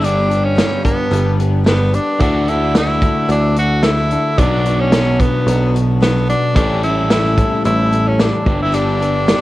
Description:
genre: folk rock and heartland rock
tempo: 110 BPM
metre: 4/4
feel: straight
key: D major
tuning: A4 = 440 Hz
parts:
  - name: edgy tenor saxophone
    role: melody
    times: 0.0-9.4 s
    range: B3 to F#4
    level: -19 LUFS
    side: equal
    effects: tape echo
  - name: picked steel-string acoustic guitar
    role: accompaniment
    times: 0.0-9.4 s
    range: G2 to A4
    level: -23 LUFS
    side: left 4 dB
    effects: cassette tape
  - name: crunchy overdriven guitar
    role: riff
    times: 0.0-9.4 s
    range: G2 to G4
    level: -20 LUFS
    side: equal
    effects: cassette tape
  - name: picked electric bass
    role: bass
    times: 0.0-9.3 s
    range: G1 to D2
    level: -18 LUFS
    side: equal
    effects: none
  - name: natural country drum kit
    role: drums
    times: 0.0-9.4 s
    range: hi-hat, kick drum, snare drum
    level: -17 LUFS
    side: equal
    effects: cassette tape
room: light reverb, studio reverb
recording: home recording on cassette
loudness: -12 LUFS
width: side -16 dB against mid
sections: 0.0-9.4 A section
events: none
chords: 0.0 G; 2.2 Dadd9; 4.4 Bm; 6.6 A7; 8.5 G

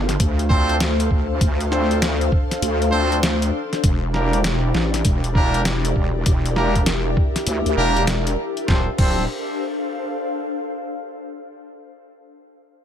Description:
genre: glitch hop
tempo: 99 BPM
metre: 4/4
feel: swing 64% on 16ths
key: D minor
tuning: A4 = 440 Hz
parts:
  - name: warm analog pad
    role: sustained chords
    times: 0.0-9.0 s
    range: D4 to F5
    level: -29 LUFS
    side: left 1 dB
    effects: chorus, sidechain pumping
  - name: wobble bass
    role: bass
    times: 0.0-9.3 s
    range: D1 to D2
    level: -21 LUFS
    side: equal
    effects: chorus
  - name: ethereal airy pad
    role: texture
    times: 0.0-11.1 s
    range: D4 to F5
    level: -26 LUFS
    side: left 3 dB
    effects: ensemble chorus, built-in reverb, sidechain pumping
  - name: boom bap sampler-style drum kit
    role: drums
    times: 0.1-9.1 s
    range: crash cymbal, hi-hat, snare drum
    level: -25 LUFS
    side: left 1 dB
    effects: none
  - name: electronic kick drum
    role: drums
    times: 0.2-9.1 s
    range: none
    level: -19 LUFS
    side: equal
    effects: none
  - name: brilliant horn section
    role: stabs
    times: 0.5-9.2 s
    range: Bb3 to C5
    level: -25 LUFS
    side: right 1 dB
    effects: sidechain pumping, dub echo
room: light reverb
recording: none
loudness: -18 LUFS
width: side -9 dB against mid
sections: 0.0-8.7 A section; 8.7-11.1 B section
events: drop 0.0-8.7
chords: 0.0 Dm7; 3.8 Em7b5; 8.7 Dm7

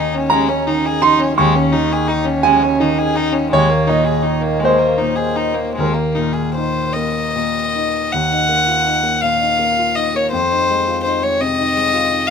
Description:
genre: neoclassical piano and strings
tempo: 50-58 BPM (dotted quarters)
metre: 6/8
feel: rubato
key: Eb dorian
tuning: A4 = 438 Hz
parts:
  - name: rich violin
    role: melody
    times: 0.0-12.3 s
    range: Ab3 to Gb5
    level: -17 LUFS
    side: left 2 dB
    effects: none
  - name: warm grand piano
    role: accompaniment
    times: 0.0-12.3 s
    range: Eb2 to Db6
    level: -16 LUFS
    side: right 1 dB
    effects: none
room: light reverb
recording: minimal, uncompressed stereo recording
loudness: -14 LUFS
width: side -6 dB against mid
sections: 0.0-8.1 A section; 8.1-12.3 B section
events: none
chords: 0.0 Dbsus2/Eb; 3.5 Absus2/Eb; 8.1 Ebmadd9; 10.3 Fm7

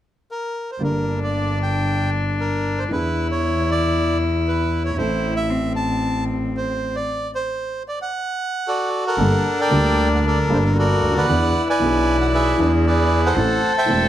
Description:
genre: tango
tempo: 115 BPM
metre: 4/4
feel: rubato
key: unclear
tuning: A4 = 440 Hz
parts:
  - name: bandoneon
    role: melody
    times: 0.3-14.1 s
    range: F#4 to A5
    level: -22 LUFS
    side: right 2 dB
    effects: plate reverb
  - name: warm cello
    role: second line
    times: 0.8-14.1 s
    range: C4 to A4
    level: -23 LUFS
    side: left 4 dB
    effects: none
  - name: warm upright piano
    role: accompaniment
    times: 0.8-14.1 s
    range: E1 to Bb4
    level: -24 LUFS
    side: equal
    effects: none
  - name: bright double bass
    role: bass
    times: 0.8-14.1 s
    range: E1 to E2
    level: -23 LUFS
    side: right 1 dB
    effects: none
room: light reverb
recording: none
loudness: -18 LUFS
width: side -12 dB against mid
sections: 0.8-9.2 A section; 9.2-14.1 B section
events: stop 7.1-9.2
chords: 0.0 N.C.; 0.8 Gm; 2.9 E7; 5.0 Am; 7.1 F#dim; 9.2 Gmadd9; 11.3 E7; 13.4 Am

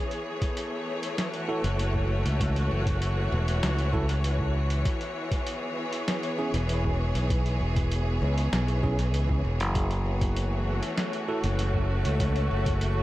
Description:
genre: ambient dub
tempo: 98 BPM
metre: 4/4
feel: straight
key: F# minor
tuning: A4 = 441 Hz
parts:
  - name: clear studio string section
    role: sustained chords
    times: 0.0-13.0 s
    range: E3 to C#5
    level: -31 LUFS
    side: left 1 dB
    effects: vintage 12-bit sampler grit
  - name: lo-fi sampler-style drum kit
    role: drums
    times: 0.1-12.9 s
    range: hi-hat, snare drum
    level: -35 LUFS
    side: equal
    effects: overdrive, dub echo
  - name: electronic kick drum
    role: drums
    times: 0.4-12.8 s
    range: none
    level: -30 LUFS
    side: equal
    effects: overdrive
  - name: bell-like tine electric piano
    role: stabs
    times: 1.5-11.4 s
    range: C#4 to A4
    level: -36 LUFS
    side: right 2 dB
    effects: dub echo
  - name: modern bright fingered electric bass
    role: bass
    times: 1.6-13.0 s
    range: E1 to C#2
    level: -26 LUFS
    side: equal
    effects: none
  - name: backwards swelling texture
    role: texture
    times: 10.7-13.0 s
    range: C#4 to C#5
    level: -38 LUFS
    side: left 2 dB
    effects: built-in reverb
room: little or no reverb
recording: echo-heavy mix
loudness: -25 LUFS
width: side -16 dB against mid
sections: 0.0-13.0 A section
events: none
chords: 0.0 F#m7; 4.9 E6; 9.8 F#m7

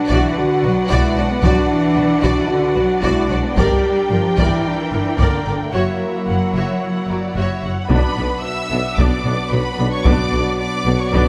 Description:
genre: cinematic, epic orchestral film score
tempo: 112 BPM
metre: 4/4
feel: straight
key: B minor from 7.9 s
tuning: A4 = 442 Hz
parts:
  - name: warm symphonic violin section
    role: melody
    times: 0.0-11.3 s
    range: D5 to E6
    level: -29 LUFS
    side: equal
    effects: none
  - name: mellow French horn section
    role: sustained chords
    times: 0.0-11.3 s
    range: A3 to G4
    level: -24 LUFS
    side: equal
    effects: none
  - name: rich symphonic string section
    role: sustained chords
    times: 0.0-11.3 s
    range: D4 to G5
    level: -29 LUFS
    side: equal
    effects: none
  - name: warm symphonic cello section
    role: bass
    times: 0.0-11.2 s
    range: B2 to G#3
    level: -25 LUFS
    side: equal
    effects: none
  - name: warm symphonic violin section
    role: second line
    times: 0.1-11.3 s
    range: Bb4 to E5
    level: -30 LUFS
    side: equal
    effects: none
  - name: rich symphonic viola section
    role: accompaniment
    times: 0.1-11.3 s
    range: F#3 to Bb4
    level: -28 LUFS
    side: equal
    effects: none
  - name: rich symphonic double bass section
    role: bass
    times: 0.1-11.2 s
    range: F#1 to B1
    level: -26 LUFS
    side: equal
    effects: none
  - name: taiko ensemble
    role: drums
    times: 0.1-11.3 s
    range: none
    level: -22 LUFS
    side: equal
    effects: none
  - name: mellow trombone section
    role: sustained chords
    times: 7.9-11.3 s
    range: B2 to F#3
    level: -29 LUFS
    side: equal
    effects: none
  - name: clear tuba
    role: bass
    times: 7.9-11.2 s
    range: B1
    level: -27 LUFS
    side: equal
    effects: none
room: wet scoring stage reverb, RT60 1.7 s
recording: none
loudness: -18 LUFS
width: mono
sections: 0.0-7.9 A section; 7.9-11.3 B section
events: none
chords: 0.0 Bm; 3.6 Gm; 5.7 F#7; 7.9 Bm

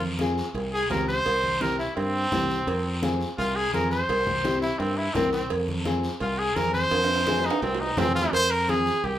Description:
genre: latin, cumbia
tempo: 170 BPM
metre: 4/4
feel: straight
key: F harmonic minor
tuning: A4 = 440 Hz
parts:
  - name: modern bright fingered electric bass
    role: bass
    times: 0.0-9.2 s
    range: C2 to G2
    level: -30 LUFS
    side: equal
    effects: none
  - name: congas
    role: percussion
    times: 0.0-9.2 s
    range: none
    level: -34 LUFS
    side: right 1 dB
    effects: none
  - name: nylon-string guitar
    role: accompaniment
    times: 0.2-8.9 s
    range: C4 to Bb4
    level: -29 LUFS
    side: left 3 dB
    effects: none
  - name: cowbell and timbales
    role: percussion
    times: 0.2-9.2 s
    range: none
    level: -32 LUFS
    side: right 4 dB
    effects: none
  - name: guiro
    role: percussion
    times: 0.2-9.2 s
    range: none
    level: -37 LUFS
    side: left 1 dB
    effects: none
  - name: clear trumpet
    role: melody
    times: 0.7-9.2 s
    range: C4 to C5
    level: -25 LUFS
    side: equal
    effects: none
room: moderate large studio reverb, RT60 1.1 s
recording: band playing live in one room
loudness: -22 LUFS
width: side -12 dB against mid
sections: 0.0-8.3 A section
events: trumpet solo 0.0-8.3; drum fill 6.9-8.3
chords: 0.0 Fm; 1.3 C; 2.7 Fm; 4.1 C7; 5.5 Fm

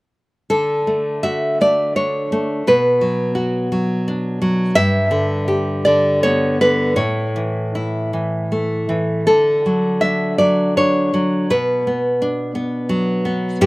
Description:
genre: romantic piece for solo classical guitar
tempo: 78-87 BPM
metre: 3/4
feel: rubato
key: D major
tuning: A4 = 440 Hz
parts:
  - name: nylon-string guitar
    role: solo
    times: 0.5-13.7 s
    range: G2 to E5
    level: -15 LUFS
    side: equal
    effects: slapback echo
room: little or no reverb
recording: recorded outdoors, with no room sound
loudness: -15 LUFS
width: side -22 dB against mid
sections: 0.5-13.7 A section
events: none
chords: 0.5 D; 2.7 Bm; 4.8 G; 7.0 A; 9.3 D; 11.5 Bm

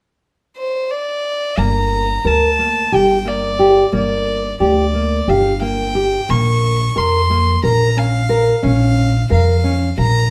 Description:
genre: contemporary instrumental, chamber music in an uneven meter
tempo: 178 BPM (eighths)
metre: 7/8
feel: straight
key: G minor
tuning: A4 = 439 Hz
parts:
  - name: rich violin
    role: melody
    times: 0.6-10.3 s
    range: C5 to Db6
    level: -22 LUFS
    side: equal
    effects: none
  - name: nylon-string guitar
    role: arpeggios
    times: 1.6-10.2 s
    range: Bb3 to Bb4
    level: -19 LUFS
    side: equal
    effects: none
  - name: upright bass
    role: bass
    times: 1.6-10.3 s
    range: G1 to F2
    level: -20 LUFS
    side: equal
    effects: none
room: wet studio reverb, RT60 0.7 s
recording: heard from further back in the room, lossy compression artefacts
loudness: -16 LUFS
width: mono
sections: 0.0-1.6 A section; 1.6-10.3 B section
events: none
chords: 0.0 N.C.; 1.6 Gm; 6.3 Bbm

